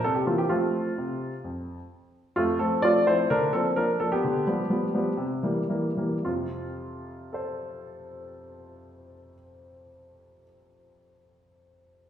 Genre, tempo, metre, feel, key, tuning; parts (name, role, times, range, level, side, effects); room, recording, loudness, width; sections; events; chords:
classical-period piano sonatina; 105-133 BPM; 4/4; rubato; F major; A4 = 440 Hz
clear baby grand piano; solo; 0.0-12.1 s; F2 to D5; -24 LUFS; equal
wet recital hall reverb, RT60 1.3 s; heard from further back in the room; -24 LUFS; side -9 dB against mid
0.0-2.4 A section; 2.4-6.2 B section; 6.2-10.6 C section
slowing down 1.4-6.2
0.0 C7; 0.5 F; 3.3 Bb/D; 4.2 G7/D; 5.2 C7; 6.2 F